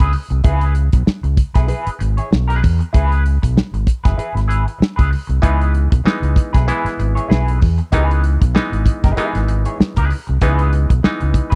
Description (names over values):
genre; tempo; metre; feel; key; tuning
funk; 96 BPM; 4/4; swing 56% on 16ths; C# minor; A4 = 440 Hz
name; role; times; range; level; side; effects
clean electric guitar; accompaniment; 0.0-11.6 s; E4 to C#5; -27 LUFS; equal; wah, spring reverb
overdriven fingered electric bass; bass; 0.0-11.6 s; F#1 to E2; -19 LUFS; equal; none
damped 70s drum kit; drums; 0.0-11.6 s; hi-hat, kick drum, snare drum; -17 LUFS; equal; none
bright clav; stabs; 5.4-11.6 s; E3 to E4; -25 LUFS; equal; none
room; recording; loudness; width
little or no reverb; dry, close 1970s-style studio recording; -16 LUFS; mono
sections
0.0-11.6 A section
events
none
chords
0.0 C#m7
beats
| 0.45 1.07 1.69 2.31 | 2.94 3.56 4.19 4.81 | 5.43 6.06 6.68 7.30 | 7.93 8.55 9.17 9.80 | 10.42 11.04